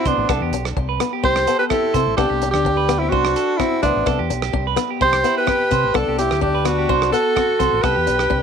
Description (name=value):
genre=highlife guitar band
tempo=127 BPM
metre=4/4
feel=straight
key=unclear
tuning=A4 = 439 Hz
part: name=bright alto saxophone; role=melody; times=0.0-8.4 s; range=D4 to C5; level=-19 LUFS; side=right 2 dB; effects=none
part: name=clear alto saxophone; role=second line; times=0.0-8.4 s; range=B3 to G4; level=-25 LUFS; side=left 14 dB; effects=none
part: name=clean electric guitar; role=arpeggios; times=0.0-8.4 s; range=E4 to C5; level=-24 LUFS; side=right 14 dB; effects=tape echo
part: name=fingerpicked swing-style acoustic guitar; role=accompaniment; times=0.1-8.4 s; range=A3 to D4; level=-26 LUFS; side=left 14 dB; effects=none
part: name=fingered electric bass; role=bass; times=0.1-8.4 s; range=A1 to C3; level=-24 LUFS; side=equal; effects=none
part: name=warm soul drum kit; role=drums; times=0.1-8.4 s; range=hi-hat, kick drum, rim click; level=-26 LUFS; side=right 3 dB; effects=none
room=light reverb, small room reverb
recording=1960s-style stereo with parts hard left and right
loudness=-16 LUFS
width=side -7 dB against mid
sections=0.0-8.4 A section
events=none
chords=0.3 G; 1.2 C; 2.2 G/C; 3.1 D7/C; 4.1 G; 5.0 C; 6.0 G/C; 6.9 Am69; 7.8 G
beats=0.29 0.76 | 1.23 1.71 2.18 2.65 | 3.12 3.60 4.07 4.54 | 5.01 5.48 5.95 6.42 | 6.89 7.36 7.83 8.30